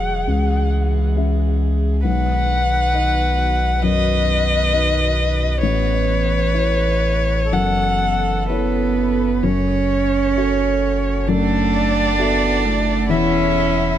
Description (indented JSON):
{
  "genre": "neoclassical piano and strings",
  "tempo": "66 BPM",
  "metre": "4/4",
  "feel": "rubato",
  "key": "F# minor",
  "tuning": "A4 = 440 Hz",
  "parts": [
    { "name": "dark violin", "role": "melody", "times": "0.0-14.0 s", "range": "B4 to F#5", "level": "-22 LUFS", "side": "left 3 dB", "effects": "tape echo" },
    { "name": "clear cello", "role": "second line", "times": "0.0-14.0 s", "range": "D#3 to E4", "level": "-23 LUFS", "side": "right 6 dB", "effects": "none" },
    { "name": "felt-muted upright piano", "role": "accompaniment", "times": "0.0-14.0 s", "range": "A1 to E5", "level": "-24 LUFS", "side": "left 4 dB", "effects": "none" },
    { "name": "warm viola", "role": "accompaniment", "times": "0.0-14.0 s", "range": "A3 to B4", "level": "-26 LUFS", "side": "right 4 dB", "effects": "none" },
    { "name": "deep dark ambient pad", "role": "sustained chords", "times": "0.0-14.0 s", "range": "G#3 to F#5", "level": "-31 LUFS", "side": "left 1 dB", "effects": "chorus, built-in reverb" },
    { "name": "saturated sub bass", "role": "bass", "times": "0.0-14.0 s", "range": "E1 to C#2", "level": "-21 LUFS", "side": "equal", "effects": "none" }
  ],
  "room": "little or no reverb",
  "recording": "close, detailed microphones",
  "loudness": "-16 LUFS",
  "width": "side -11 dB against mid",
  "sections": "0.0-9.4 A section; 9.4-14.0 B section",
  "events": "none",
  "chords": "0.3 C#m; 2.1 B; 5.6 Aadd9; 7.5 F#m7; 9.4 F#m; 11.3 Dadd9/F#; 13.1 Eadd9"
}